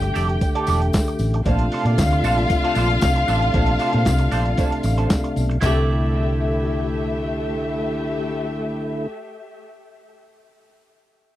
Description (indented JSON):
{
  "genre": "disco",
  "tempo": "115 BPM",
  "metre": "4/4",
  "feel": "straight",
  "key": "C major",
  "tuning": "A4 = 440 Hz",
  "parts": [
    { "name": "warm studio violin section", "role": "second line", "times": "0.0-9.1 s", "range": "A3 to G5", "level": "-25 LUFS", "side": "left 2 dB", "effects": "tape echo" },
    { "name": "electric guitar at the edge of break-up", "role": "accompaniment", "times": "0.0-9.2 s", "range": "D4 to D5", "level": "-28 LUFS", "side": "right 6 dB", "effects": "wah" },
    { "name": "tonewheel organ", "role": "sustained chords", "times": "0.0-9.1 s", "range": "C3 to G4", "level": "-25 LUFS", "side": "left 1 dB", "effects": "overdrive, chorus vibrato, slow rotary speaker" },
    { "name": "hollow-body short-scale fingered electric bass", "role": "bass", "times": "0.0-9.1 s", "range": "E1 to Bb2", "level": "-21 LUFS", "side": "equal", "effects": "none" },
    { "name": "lo-fi sampler-style drum kit", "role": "drums", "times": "0.0-5.8 s", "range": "handclaps, hi-hat, kick drum, snare drum", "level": "-22 LUFS", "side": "equal", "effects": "overdrive" },
    { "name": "tambourine", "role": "percussion", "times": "0.2-5.9 s", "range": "none", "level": "-39 LUFS", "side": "left 8 dB", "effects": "none" }
  ],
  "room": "little or no reverb",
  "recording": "dry, close 1970s-style studio recording",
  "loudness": "-18 LUFS",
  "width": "side -14 dB against mid",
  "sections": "0.0-5.6 A section; 5.6-9.8 B section",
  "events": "none",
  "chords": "0.0 F69; 1.5 Bbmaj9; 5.6 C69"
}